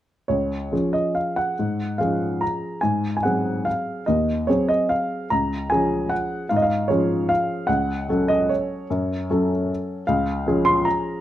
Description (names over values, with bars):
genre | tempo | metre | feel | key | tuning
classical, piano waltz | 136-158 BPM | 3/4 | rubato | Db major | A4 = 440 Hz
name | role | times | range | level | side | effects
warm baby grand piano | solo | 0.3-11.2 s | Db2 to C6 | -20 LUFS | equal | none
room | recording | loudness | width
moderate stone room reverb, RT60 1.0 s | dark, warm production | -20 LUFS | side -12 dB against mid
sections
0.3-11.2 A section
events
none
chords
0.3 Db; 2.8 Ab7; 5.3 Db; 7.7 Gbm/Db; 10.1 Db